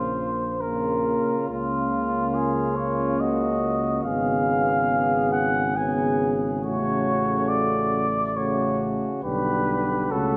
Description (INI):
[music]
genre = classical, hymn-like piece for brass band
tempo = 70 BPM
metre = 3/4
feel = rubato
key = Bb minor, F# minor from 4.0 s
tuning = A4 = 439 Hz
[part]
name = warm flugelhorn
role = melody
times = 0.0-10.4 s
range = F4 to G#5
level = -28 LUFS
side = equal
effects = none
[part]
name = warm flugelhorn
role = second line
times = 0.0-10.4 s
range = F4 to G#4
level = -32 LUFS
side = equal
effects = none
[part]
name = clear trombone section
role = accompaniment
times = 0.0-10.4 s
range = G3 to B3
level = -31 LUFS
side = equal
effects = none
[part]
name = warm euphonium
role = accompaniment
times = 0.0-10.4 s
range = C#3 to D3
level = -32 LUFS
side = equal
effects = none
[part]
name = dark tuba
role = bass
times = 0.0-10.4 s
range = G#1 to Db2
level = -32 LUFS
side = equal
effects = none
[sound]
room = wet concert hall reverb, RT60 2.2 s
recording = none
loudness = -24 LUFS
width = mono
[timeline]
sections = 0.0-10.4 A section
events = none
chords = 0.0 Bbm; 1.5 Bbm/Db; 4.0 C#7/G#; 6.6 F#m/A; 9.2 G/B